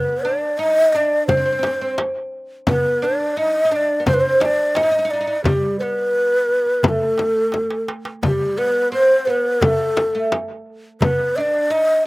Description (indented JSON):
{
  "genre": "Turkish makam ensemble",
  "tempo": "86 BPM",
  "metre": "4/4",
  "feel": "straight",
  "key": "D makam hicaz",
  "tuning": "A4 = 444 Hz",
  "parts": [
    { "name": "breathy mellow low ney", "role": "melody", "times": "0.0-12.1 s", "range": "G4 to Eb5", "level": "-17 LUFS", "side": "equal", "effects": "slapback echo" },
    { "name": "oud", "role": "second line", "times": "0.0-12.0 s", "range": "G3 to Eb4", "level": "-25 LUFS", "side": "right 2 dB", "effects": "slapback echo" },
    { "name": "darbuka", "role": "percussion", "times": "0.1-11.6 s", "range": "none", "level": "-25 LUFS", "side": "right 1 dB", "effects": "none" },
    { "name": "frame drum", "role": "percussion", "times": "1.3-11.2 s", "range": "none", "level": "-21 LUFS", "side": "left 2 dB", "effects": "none" }
  ],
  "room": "little or no reverb",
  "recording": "recorded outdoors, with no room sound",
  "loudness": "-16 LUFS",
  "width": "side -21 dB against mid",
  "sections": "0.0-12.1 A section",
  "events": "drum fill 7.5-8.2",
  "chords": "none",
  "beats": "0.59 1.28 1.98 | 2.67 3.37 4.06 4.76 | 5.45 6.15 6.84 7.54 | 8.24 8.93 9.63 10.32 | 11.02 11.72"
}